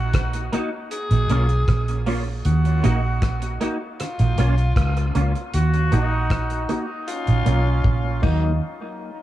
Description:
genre	dub reggae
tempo	78 BPM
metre	4/4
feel	straight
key	Eb minor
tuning	A4 = 443 Hz
part	growling tenor saxophone	second line	0.0-8.5 s	Eb4 to Ab4	-30 LUFS	left 3 dB	dub echo
part	vintage muted fingered electric bass	bass	0.0-8.6 s	Bb1 to Eb2	-19 LUFS	right 1 dB	none
part	damped 70s drum kit	drums	0.1-8.4 s	crash cymbal, hi-hat, kick drum, rim click, toms	-25 LUFS	equal	none
part	semi-hollow electric guitar	accompaniment	0.5-8.5 s	Bb3 to Gb4	-28 LUFS	right 1 dB	ensemble chorus, low-pass filter, dub echo
part	brilliant trombone	melody	5.6-8.6 s	Db4 to Gb4	-30 LUFS	equal	low-pass filter, dub echo
part	mellow tonewheel organ	accompaniment	8.2-8.5 s	Gb3 to Eb4	-32 LUFS	left 2 dB	slow rotary speaker, low-pass filter, dub echo
room	light reverb, studio ambience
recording	echo-heavy mix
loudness	-19 LUFS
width	side -14 dB against mid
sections	0.0-8.6 A section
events	break 0.0-8.6; filter sweep 0.0-8.6; drum fill 7.8-8.6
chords	0.0 Ebm; 0.9 Bbm; 2.5 Ebm; 4.0 Bbm; 5.5 Ebm; 7.1 Bbm; 8.2 Ebm; 8.6 N.C.

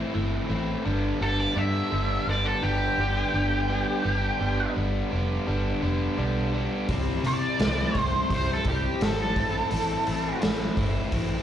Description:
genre	blues rock power trio and southern rock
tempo	85 BPM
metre	4/4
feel	straight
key	unclear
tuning	A4 = 440 Hz
part	overdriven electric guitar	riff	0.0-11.4 s	G2 to E4	-28 LUFS	equal	slapback echo
part	vintage muted fingered electric bass	bass	0.0-11.4 s	F1 to C3	-29 LUFS	equal	none
part	octave-fuzz lead guitar	melody	1.2-10.4 s	G4 to E5	-27 LUFS	equal	wah, distortion, slapback echo
part	raw garage drum kit	drums	6.9-11.3 s	hi-hat, kick drum, snare drum	-28 LUFS	equal	none
room	light reverb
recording	live gig heard through the venue's PA, club reverb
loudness	-23 LUFS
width	side -10 dB against mid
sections	0.0-11.4 A section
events	none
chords	0.0 Am; 0.9 G; 6.9 C; 9.4 Am

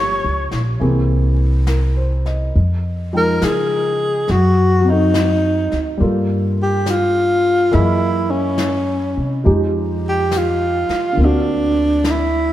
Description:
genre	jazz ballad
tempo	69 BPM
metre	4/4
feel	swing 67% on 8ths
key	F minor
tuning	A4 = 440 Hz
part	breathy tenor saxophone	melody	0.0-12.5 s	Db4 to Db5	-17 LUFS	equal	none
part	warm concert grand piano	accompaniment	0.0-12.5 s	D3 to G5	-22 LUFS	equal	none
part	upright bass	bass	0.0-12.5 s	G1 to Db3	-18 LUFS	equal	none
part	jazz brush drum kit	drums	0.5-12.5 s	brushed snare drum, hi-hat, snare drum	-29 LUFS	left 2 dB	none
room	moderate echo chamber reverb, RT60 2.3 s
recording	heard from further back in the room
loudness	-14 LUFS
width	side -13 dB against mid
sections	0.0-12.5 A section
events	none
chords	0.0 Gm7b5; 0.8 Caug7; 2.5 Fm9; 4.3 F#dim7; 6.0 Gm9; 7.7 Gb13; 9.5 Fm9; 11.2 D7b13

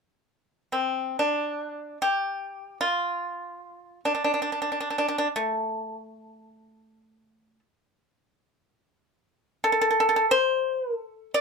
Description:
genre	chinese traditional, Chinese solo plucked strings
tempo	free time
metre	none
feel	none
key	D yu mode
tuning	A4 = 441 Hz
part	pipa	solo	0.7-11.4 s	A3 to D5	-24 LUFS	equal	none
room	light reverb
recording	none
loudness	-24 LUFS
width	side -4 dB against mid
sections	0.0-11.4 A section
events	none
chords	none

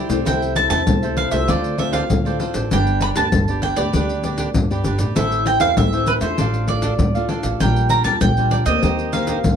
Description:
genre	samba and choro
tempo	98 BPM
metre	4/4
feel	straight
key	unclear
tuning	A4 = 439 Hz
part	cavaquinho	accompaniment	0.0-9.4 s	D4 to G5	-27 LUFS	right 6 dB	none
part	nylon-string guitar	accompaniment	0.0-9.6 s	A2 to G4	-25 LUFS	left 5 dB	none
part	upright bass	bass	0.1-9.6 s	G1 to Eb3	-22 LUFS	right 1 dB	none
part	maracas, surdo and pandeiro	percussion	0.1-9.6 s	none	-21 LUFS	left 2 dB	none
part	mandolin	melody	0.3-9.6 s	B4 to B5	-22 LUFS	right 3 dB	none
room	moderate studio reverb, RT60 0.5 s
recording	dark, warm production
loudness	-16 LUFS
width	side -8 dB against mid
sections	0.0-9.6 A section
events	none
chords	0.3 Am/C; 1.5 Dm7; 2.7 G; 5.2 Am; 6.4 Dm/A; 7.6 Bb6; 8.8 Eb6

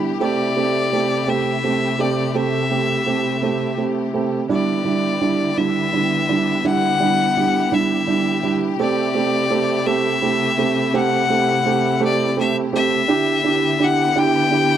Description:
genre	six-eight pop ballad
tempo	56 BPM (dotted quarters)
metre	6/8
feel	straight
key	E minor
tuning	A4 = 440 Hz
part	dark concert grand piano	accompaniment	0.0-14.8 s	G3 to G4	-19 LUFS	right 5 dB	none
part	clear studio string section	sustained chords	0.0-14.8 s	C3 to G4	-26 LUFS	left 4 dB	none
part	bright violin	melody	0.2-14.8 s	D5 to G5	-21 LUFS	left 5 dB	none
room	light reverb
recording	dry, close 1970s-style studio recording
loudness	-16 LUFS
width	side -10 dB against mid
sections	0.0-4.5 A section; 4.5-13.1 B section; 13.1-14.8 C section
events	none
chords	0.2 Am7; 4.5 Em7; 8.8 Am7; 13.1 Em7

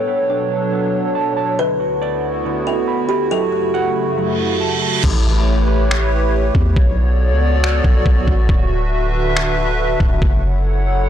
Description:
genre	hip hop, atmospheric cloud-rap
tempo	139 BPM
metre	4/4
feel	half-time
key	B minor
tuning	A4 = 439 Hz
part	kalimba	melody	0.0-4.6 s	G4 to C#5	-21 LUFS	left 1 dB	low-pass filter, ping-pong delay
part	hollow soft pad	sustained chords	0.0-11.1 s	D2 to F#5	-20 LUFS	right 1 dB	chorus, sidechain pumping, low-pass filter
part	mellow electric guitar	arpeggios	0.0-5.0 s	D3 to B5	-25 LUFS	right 6 dB	phaser, low-pass filter, ping-pong delay
part	reverse cymbal and impact	sound effects	4.3-6.8 s	none	-24 LUFS	right 4 dB	none
part	long sustained 808-style bass	bass	5.0-11.1 s	D1 to E2	-17 LUFS	equal	none
part	trip hop sampler-style drum kit	drums	5.0-10.3 s	crash cymbal, finger snaps, kick drum	-18 LUFS	equal	soft clipping on snare
room	digital ambience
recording	blown-out, overdriven recording, overdrive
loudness	-14 LUFS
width	side -10 dB against mid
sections	0.0-5.0 A section; 5.0-11.1 B section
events	reverse cymbal 4.3-5.0; hi-hats muted 5.0-11.1; impact 5.0-6.8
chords	0.0 Bm7; 1.6 D6; 3.3 F#m7; 5.0 A7; 6.8 Bm7; 8.5 D6; 10.2 F#m7

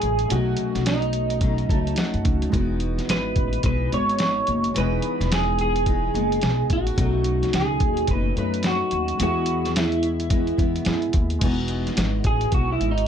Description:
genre	indie pop, bedroom pop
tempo	108 BPM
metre	4/4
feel	swing 60% on 16ths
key	E major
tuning	A4 = 442 Hz
part	electric guitar through a small old amp	melody	0.0-13.1 s	D#4 to C#5	-25 LUFS	right 2 dB	analog chorus, tape echo
part	fingerpicked steel-string acoustic guitar	accompaniment	0.0-13.1 s	B2 to E4	-29 LUFS	left 4 dB	wide subtle chorus, vibrato effect
part	warbly lo-fi synth keys	accompaniment	0.0-13.1 s	G#3 to A5	-32 LUFS	right 3 dB	chorus, phaser
part	upright bass	bass	0.0-13.1 s	E1 to F#2	-26 LUFS	equal	none
part	lo-fi sampler-style drum kit	drums	0.0-13.1 s	crash cymbal, hi-hat, kick drum, snare drum	-24 LUFS	equal	none
room	light reverb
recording	dark, warm production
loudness	-20 LUFS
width	side -8 dB against mid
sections	0.0-11.4 A section; 11.4-13.1 B section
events	synth keys fill 1.4-2.5; clean electric guitar solo 11.4-13.1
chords	0.0 B7; 2.5 Emaj7; 7.0 B7; 9.2 E; 11.4 Emaj7

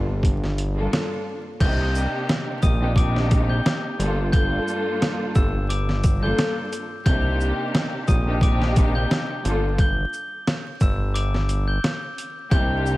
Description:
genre	hip hop, boom-bap hip-hop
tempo	88 BPM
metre	4/4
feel	swing 55% on 16ths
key	C minor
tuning	A4 = 440 Hz
part	warm symphonic string section	accompaniment	0.0-13.0 s	G2 to A4	-27 LUFS	equal	cassette tape, high-pass filter, low-pass filter
part	fat analog bass	bass	0.0-13.0 s	G1 to C2	-23 LUFS	equal	none
part	trip hop sampler-style drum kit	drums	0.2-13.0 s	crash cymbal, hi-hat, kick drum, shaker, snare drum	-22 LUFS	equal	none
part	glockenspiel with soft plastic mallets	melody	1.6-13.0 s	D6 to G7	-30 LUFS	left 2 dB	high-pass filter, low-pass filter, digital delay
room	little or no reverb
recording	vinyl crackle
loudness	-20 LUFS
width	side -18 dB against mid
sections	0.0-1.6 A section; 1.6-12.5 B section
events	break 9.8-12.5; kick muted 11.2-12.5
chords	0.0 Gm9; 1.6 Cm9; 4.0 Gm9; 7.1 Cm9; 9.4 G5

